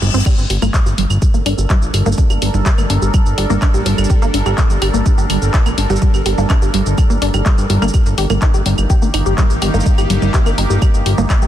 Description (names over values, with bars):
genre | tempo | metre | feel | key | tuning
melodic techno | 125 BPM | 4/4 | straight | G minor | A4 = 440 Hz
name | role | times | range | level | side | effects
tight sequenced synth | arpeggios | 0.0-11.5 s | G3 to G4 | -21 LUFS | equal | chorus, sidechain pumping, tape echo
fat analog bass | bass | 0.0-11.5 s | G1 to G2 | -17 LUFS | equal | tube saturation, sidechain pumping
house drum kit | drums | 0.0-11.5 s | claves, congas, crash cymbal, handclaps, hi-hat, shaker | -21 LUFS | right 2 dB | none
evolving wavetable pad | sustained chords | 1.1-11.5 s | Eb3 to Bb4 | -23 LUFS | right 1 dB | phaser, built-in reverb, sidechain pumping
electronic kick drum | drums | 0.3-11.4 s | none | -13 LUFS | equal | none
room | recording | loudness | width
light reverb, digital ambience | dense, heavily limited modern master | -12 LUFS | side -12 dB against mid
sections
0.0-11.5 A section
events
none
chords
0.3 Gm; 7.9 Eb/G